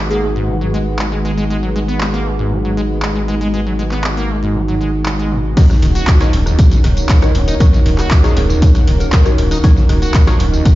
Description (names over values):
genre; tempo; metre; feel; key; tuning
acid house; 118 BPM; 4/4; straight; Eb minor; A4 = 441 Hz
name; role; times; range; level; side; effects
lush unison pad; sustained chords; 0.0-10.8 s; Eb3 to Gb4; -24 LUFS; equal; chorus, sidechain pumping
saturated sub bass; bass; 0.0-10.6 s; Eb1 to Ab1; -18 LUFS; equal; sidechain pumping
warbly tape-like pad; texture; 0.0-10.8 s; Eb4 to Gb5; -24 LUFS; right 1 dB; chorus, built-in reverb, sidechain pumping
soft struck synth lead; melody; 0.1-0.3, 8.2-9.2 s; Ab4 to Bb4; -24 LUFS; left 1 dB; chorus, vintage 12-bit sampler grit, ping-pong delay
acid bass, saw; riff; 0.1-10.7 s; Eb2 to Gb4; -21 LUFS; equal; lush chorus, tape echo
punchy analog drum machine; drums; 1.0-10.8 s; crash cymbal, handclaps, hi-hat, rim click, snare drum, tambourine; -22 LUFS; equal; none
filtered dub chord stab; stabs; 5.6-10.3 s; Eb4 to Db5; -24 LUFS; left 2 dB; phaser, tape echo
breakbeat sampler-style drum kit; drums; 5.6-10.8 s; ride cymbal, snare drum; -33 LUFS; right 2 dB; none
electronic kick drum; drums; 5.6-10.8 s; none; -10 LUFS; equal; none
room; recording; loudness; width
light reverb; played on a big sound system in a bare room, large studio reverb, nothing above 7.5 kHz; -11 LUFS; side -16 dB against mid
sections
0.0-5.6 A section; 5.6-10.8 B section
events
drop 5.6-10.8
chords
0.0 Abm7; 5.6 Ebm7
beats
0.48 0.99 | 1.50 2.01 2.52 3.03 | 3.54 4.04 4.55 5.06 | 5.57 6.08 6.59 7.09 | 7.60 8.11 8.62 9.13 | 9.64 10.15 10.65